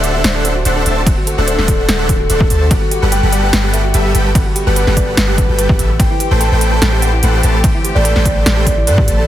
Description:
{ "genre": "future bass", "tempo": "146 BPM", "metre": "4/4", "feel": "half-time", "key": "unclear", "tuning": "A4 = 440 Hz", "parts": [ { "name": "kalimba", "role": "melody", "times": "0.0-9.2 s", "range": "A4 to A5", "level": "-21 LUFS", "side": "left 1 dB", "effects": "sidechain pumping, dub echo" }, { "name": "rich chamber string section", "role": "sustained chords", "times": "0.0-9.3 s", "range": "D3 to G4", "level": "-25 LUFS", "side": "left 3 dB", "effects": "sidechain pumping" }, { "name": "thumb-piano-like synth pluck", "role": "arpeggios", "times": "0.0-9.2 s", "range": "E4 to D5", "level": "-26 LUFS", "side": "right 3 dB", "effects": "chorus, sidechain pumping, dub echo" }, { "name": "dense compressed supersaw", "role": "riff", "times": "0.0-9.2 s", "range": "G3 to A5", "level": "-18 LUFS", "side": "equal", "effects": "sidechain pumping" }, { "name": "warm 808-style bass", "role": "bass", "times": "0.0-9.3 s", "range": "D1 to A2", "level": "-15 LUFS", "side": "equal", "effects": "sidechain pumping" }, { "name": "big-room dance drum kit", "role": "drums", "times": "0.0-9.2 s", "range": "hi-hat, ride cymbal, snare drum", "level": "-19 LUFS", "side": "equal", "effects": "overdrive" }, { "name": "electronic kick drum", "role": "drums", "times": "1.1-9.1 s", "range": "none", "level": "-15 LUFS", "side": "equal", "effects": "overdrive" } ], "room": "little or no reverb", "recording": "dense, heavily limited modern master", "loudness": "-11 LUFS", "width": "side -12 dB against mid", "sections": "0.0-9.3 A section", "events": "none", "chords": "0.0 D7; 2.7 Gmaj7; 6.0 Am7" }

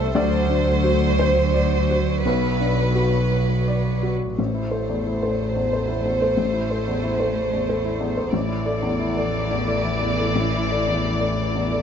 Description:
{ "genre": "neoclassical piano and strings", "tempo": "56-63 BPM (dotted quarters)", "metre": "6/8", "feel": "rubato", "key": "A dorian", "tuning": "A4 = 440 Hz", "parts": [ { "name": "warm chamber violin section", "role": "melody", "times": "0.0-11.8 s", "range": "B4 to D5", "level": "-25 LUFS", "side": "equal", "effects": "none" }, { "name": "rich cello", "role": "second line", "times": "0.0-11.8 s", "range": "E3 to A3", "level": "-28 LUFS", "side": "right 7 dB", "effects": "none" }, { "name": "felt-muted upright piano", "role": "accompaniment", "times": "0.0-11.8 s", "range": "A1 to A5", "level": "-24 LUFS", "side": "left 2 dB", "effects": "none" }, { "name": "warm double bass", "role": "bass", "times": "0.0-11.8 s", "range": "A1 to D2", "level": "-24 LUFS", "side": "left 1 dB", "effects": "none" } ], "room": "light reverb", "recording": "nothing above 7.6 kHz", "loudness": "-19 LUFS", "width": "side -8 dB against mid", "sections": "0.0-4.4 A section; 4.4-11.8 B section", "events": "none", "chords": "0.2 D7; 2.3 Bm; 4.4 Am; 8.3 Dsus2/A" }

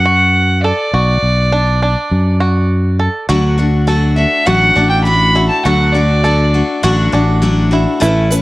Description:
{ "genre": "indie folk with a building arrangement", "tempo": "102 BPM", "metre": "4/4", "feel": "straight", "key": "D major", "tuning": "A4 = 441 Hz", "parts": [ { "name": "warm fiddle", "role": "melody", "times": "0.0-6.8 s", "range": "D5 to B5", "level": "-15 LUFS", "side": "equal", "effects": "cassette tape, tape echo" }, { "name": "bluegrass banjo", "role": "arpeggios", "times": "0.0-8.4 s", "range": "D4 to A4", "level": "-20 LUFS", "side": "right 2 dB", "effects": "none" }, { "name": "fingered electric bass", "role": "bass", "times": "0.0-8.4 s", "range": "A1 to F#2", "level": "-13 LUFS", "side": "equal", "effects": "none" }, { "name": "picked steel-string acoustic guitar", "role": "accompaniment", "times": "3.3-8.4 s", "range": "D3 to B4", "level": "-17 LUFS", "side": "left 4 dB", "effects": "none" }, { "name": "felt-muted upright piano", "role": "accompaniment", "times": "8.0-8.4 s", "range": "A1 to B4", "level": "-18 LUFS", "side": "right 1 dB", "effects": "none" }, { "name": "tube shaker", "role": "percussion", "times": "8.0-8.4 s", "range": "none", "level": "-23 LUFS", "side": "right 6 dB", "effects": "none" } ], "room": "small room ambience", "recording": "home recording on cassette", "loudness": "-10 LUFS", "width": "side -18 dB against mid", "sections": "0.0-3.3 A section; 3.3-8.4 B section", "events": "none", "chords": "0.0 Bm7; 3.3 D" }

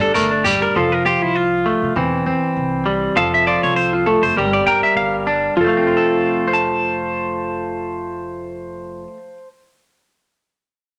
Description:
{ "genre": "highlife guitar band", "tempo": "100 BPM", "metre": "4/4", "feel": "swing 55% on 16ths", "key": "F major", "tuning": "A4 = 440 Hz", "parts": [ { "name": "clean electric guitar", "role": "accompaniment", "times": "0.0-9.5 s", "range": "E3 to A5", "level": "-21 LUFS", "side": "equal", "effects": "none" }, { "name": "clean electric guitar", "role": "arpeggios", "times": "0.0-9.2 s", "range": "D4 to G5", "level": "-21 LUFS", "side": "equal", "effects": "none" }, { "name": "upright bass", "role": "bass", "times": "0.2-9.0 s", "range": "E1 to G2", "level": "-32 LUFS", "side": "equal", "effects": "none" }, { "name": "shekere", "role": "percussion", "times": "0.2-0.6 s", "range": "none", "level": "-28 LUFS", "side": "equal", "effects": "none" } ], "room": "wet studio reverb, RT60 0.8 s", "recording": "none", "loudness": "-18 LUFS", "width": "mono", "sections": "0.0-5.6 A section; 5.6-8.0 B section", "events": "clean electric guitar solo 0.0-5.6", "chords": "0.0 G5; 0.8 F; 2.0 C/E; 3.2 F; 4.4 Gm; 5.6 F" }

